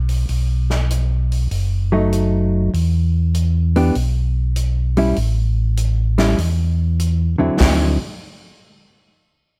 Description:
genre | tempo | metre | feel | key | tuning
soul jazz organ trio | 98 BPM | 4/4 | swing 67% on 8ths | D major | A4 = 441 Hz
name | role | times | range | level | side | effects
mellow tonewheel organ | bass | 0.0-8.0 s | F#1 to E2 | -19 LUFS | equal | slow rotary speaker
swinging big-band drum kit | drums | 0.1-7.8 s | hi-hat, kick drum, snare drum | -26 LUFS | equal | none
hollow-body jazz guitar | accompaniment | 1.9-8.0 s | D3 to G4 | -20 LUFS | equal | none
room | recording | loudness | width
little or no reverb | none | -18 LUFS | mono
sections
0.0-7.6 A section; 7.6-9.6 B section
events
none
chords
0.3 B7; 2.7 Em; 5.2 A5; 7.6 D9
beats
| 0.30 0.91 1.52 2.13 | 2.74 3.35 3.96 4.57 | 5.17 5.78 6.39 7.00 | 7.61

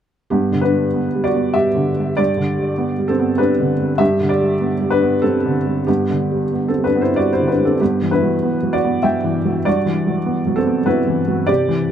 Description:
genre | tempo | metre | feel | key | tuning
neoclassical minimalist piano | 97 BPM | 3/4 | rubato | G major | A4 = 440 Hz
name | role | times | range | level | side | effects
felt-muted upright piano | solo | 0.3-11.9 s | G2 to G5 | -15 LUFS | equal | none
room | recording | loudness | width
little or no reverb | close, detailed microphones | -15 LUFS | side -9 dB against mid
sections
0.3-11.9 A section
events
none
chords
0.3 G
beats
| 0.32 0.94 1.56 | 2.19 2.79 3.39 | 4.00 4.61 5.24 | 5.88 6.53 7.17 | 7.80 8.43 9.05 | 9.66 10.27 10.88 | 11.49

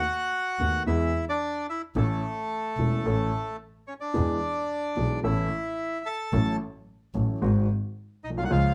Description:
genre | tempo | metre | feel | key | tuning
tango | 110 BPM | 4/4 | rubato | A major | A4 = 440 Hz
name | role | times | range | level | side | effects
bandoneon | melody | 0.0-8.7 s | A3 to A5 | -31 LUFS | equal | none
warm baby grand piano | accompaniment | 0.6-8.7 s | E1 to A4 | -31 LUFS | equal | none
dark double bass | bass | 0.6-8.7 s | E1 to E2 | -30 LUFS | equal | none
room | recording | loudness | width
moderate club reverb, RT60 0.7 s | dark, warm production | -28 LUFS | mono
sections
0.0-8.7 A section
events
none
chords
0.0 B7; 0.9 E; 2.0 A; 4.1 E; 5.2 Aadd9; 6.3 F#m/A; 7.4 G#7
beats
0.33 0.87 1.42 | 1.96 2.51 3.05 3.60 | 4.15 4.69 5.24 5.78 | 6.33 6.88 7.42 7.96 | 8.51

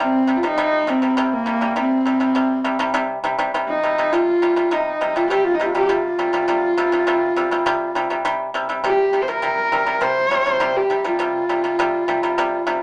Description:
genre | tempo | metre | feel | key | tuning
mongolian traditional, Mongolian folk | 102 BPM | 4/4 | straight | C yu mode | A4 = 441 Hz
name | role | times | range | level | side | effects
rich horsehead fiddle | melody | 0.0-12.8 s | Bb3 to C5 | -21 LUFS | equal | none
pipa | arpeggios | 0.0-12.8 s | C3 to G3 | -24 LUFS | equal | none
room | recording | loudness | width
wet club reverb, RT60 0.7 s | none | -19 LUFS | mono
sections
0.0-12.8 A section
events
none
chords
0.0 C5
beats
0.58 1.17 | 1.76 2.35 2.94 3.53 | 4.12 4.71 5.30 5.89 | 6.48 7.07 7.66 8.25 | 8.84 9.43 10.02 10.61 | 11.20 11.79 12.38

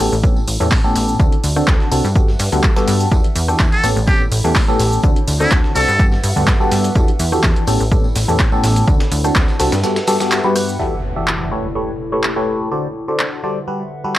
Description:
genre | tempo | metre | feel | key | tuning
piano house | 125 BPM | 4/4 | swing 53% on 16ths | unclear | A4 = 440 Hz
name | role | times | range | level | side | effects
barking FM electric piano | riff | 0.0-14.2 s | G2 to E5 | -18 LUFS | left 1 dB | phaser, sidechain pumping, low-pass filter, tape echo
plucky analog bass | bass | 0.0-9.8 s | A1 to G2 | -18 LUFS | equal | sidechain pumping
breakbeat sampler-style drum kit | drums | 0.0-10.7 s | hi-hat, snare drum, tambourine | -28 LUFS | equal | sidechain pumping on perc, high-pass filter on perc, sidechain pumping on hats, high-pass filter on hats, high-pass filter on snare
punchy analog drum machine | drums | 0.0-14.2 s | cabasa, handclaps, hi-hat, rim click | -22 LUFS | equal | overdrive
tambourine | percussion | 0.0-10.8 s | none | -33 LUFS | equal | none
warbly tape-like pad | texture | 0.2-14.2 s | D3 to F#5 | -29 LUFS | left 2 dB | chorus, built-in reverb, sidechain pumping
electronic kick drum | drums | 0.2-9.5 s | none | -15 LUFS | equal | overdrive
trumpet with metal mute | melody | 3.7-6.0 s | E4 to A4 | -19 LUFS | equal | tape echo
impact | sound effects | 10.8-12.7 s | none | -28 LUFS | equal | none
room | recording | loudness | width
little or no reverb | dry, gritty hardware recording, transformer saturation | -13 LUFS | side -14 dB against mid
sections
0.0-10.8 A section; 10.8-14.2 B section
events
fade-in on ambient pad 0.0-10.8; band accent 10.3; impact 10.8-12.7; filter sweep on FM electric piano 10.8-14.2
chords
0.0 A9; 1.2 D7; 2.2 Gmaj9; 3.1 Em11; 3.8 A9; 5.0 D7; 6.0 Gmaj9; 7.0 Em11; 7.7 A9; 8.9 D7; 9.8 Gmaj9; 10.8 Em11; 11.5 A9; 12.7 D7; 13.7 Gmaj9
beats
0.24 0.72 | 1.20 1.68 2.16 2.64 | 3.12 3.60 4.08 4.56 | 5.04 5.52 6.00 6.48 | 6.96 7.44 7.92 8.40 | 8.88 9.36 9.84 10.32 | 10.80 11.28 11.76 12.24 | 12.72 13.20 13.68 14.16

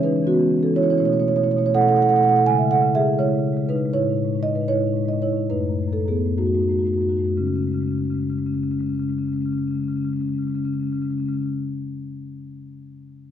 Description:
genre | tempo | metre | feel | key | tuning
classical, contemporary piece for solo marimba | 58-84 BPM (dotted quarters) | 6/8 | rubato | C# minor | A4 = 439 Hz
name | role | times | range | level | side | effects
marimba with soft mallets | solo | 0.0-11.5 s | F#2 to G#5 | -19 LUFS | equal | none
room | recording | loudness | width
light reverb | dark, warm production | -19 LUFS | side -9 dB against mid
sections
0.0-7.4 A section; 7.4-11.4 B section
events
slowing down 3.2-7.4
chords
0.0 E6; 1.0 B9sus4; 2.5 C#m; 3.9 Amaj7#11; 5.5 F#m6; 7.4 C#5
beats
0.27 | 0.99 1.74 | 2.46 3.19 | 3.92 4.68 | 5.49 6.37 | 7.37 8.38 | 9.39 10.40

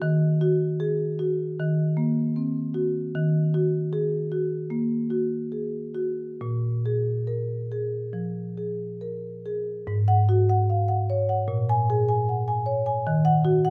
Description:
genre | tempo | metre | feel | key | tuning
classical, contemporary piece for solo marimba | 67-78 BPM | 4/4 | rubato | Bb minor | A4 = 441 Hz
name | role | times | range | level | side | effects
marimba with medium mallets | solo | 0.0-13.7 s | Ab2 to Ab5 | -25 LUFS | equal | none
room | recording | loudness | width
wet recital hall reverb, RT60 1.3 s | close, detailed microphones | -25 LUFS | mono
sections
0.0-9.9 A section; 9.9-13.7 B section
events
none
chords
0.0 Gbadd9/Eb; 3.1 Ebm; 6.4 Bb5; 9.9 Ab7sus4; 11.5 Bbm7; 13.1 Ebm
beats
| 0.04 0.81 1.60 2.37 | 3.15 3.93 4.72 5.54 | 6.42 7.29 8.15 9.02 | 9.88 10.69 11.48 12.27 | 13.06

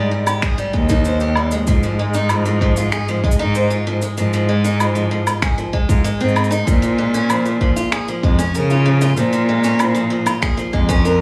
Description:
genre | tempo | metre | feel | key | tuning
folktronica | 96 BPM | 4/4 | straight | unclear | A4 = 436 Hz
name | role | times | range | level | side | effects
picked steel-string acoustic guitar | arpeggios | 0.0-11.2 s | F3 to C5 | -24 LUFS | equal | digital delay
rich cello | bass | 0.0-11.2 s | Eb2 to Db3 | -20 LUFS | equal | none
electronic woodblock, shaker and finger snaps | drums | 0.3-11.2 s | none | -26 LUFS | equal | none
electronic kick drum | drums | 0.4-11.0 s | none | -21 LUFS | equal | none
room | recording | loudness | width
small room ambience | vinyl crackle, small room reverb | -17 LUFS | mono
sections
0.0-11.2 A section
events
none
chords
0.0 Abmaj7(no3); 1.7 Fm/Ab; 6.7 Bbm7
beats
0.42 1.05 | 1.68 2.30 2.92 3.55 | 4.17 4.80 5.42 6.05 | 6.67 7.30 7.92 8.55 | 9.18 9.80 10.43 11.05

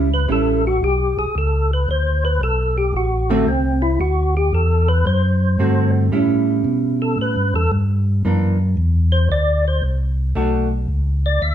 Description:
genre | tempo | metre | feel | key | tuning
soul jazz organ trio | 113 BPM | 4/4 | swing 67% on 8ths | unclear | A4 = 445 Hz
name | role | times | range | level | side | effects
hollow-body jazz guitar | accompaniment | 0.0-10.7 s | D3 to F#4 | -20 LUFS | right 3 dB | none
mellow tonewheel organ | bass | 0.0-11.5 s | A1 to B2 | -18 LUFS | equal | chorus vibrato, slow rotary speaker
percussive tonewheel organ | melody | 0.1-11.5 s | A3 to E5 | -20 LUFS | left 1 dB | chorus vibrato, slow rotary speaker
room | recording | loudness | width
wet studio reverb, RT60 1.0 s | heard from further back in the room | -16 LUFS | side -10 dB against mid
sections
0.0-11.5 A section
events
tonewheel organ solo 0.0-11.5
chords
0.0 A7; 1.9 D7; 6.1 A7; 8.2 F#aug7; 10.4 Bm7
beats
0.29 0.82 1.35 | 1.88 2.41 2.94 3.47 | 4.00 4.53 5.06 5.59 | 6.12 6.65 7.18 7.71 | 8.24 8.77 9.30 9.82 | 10.35 10.88 11.41

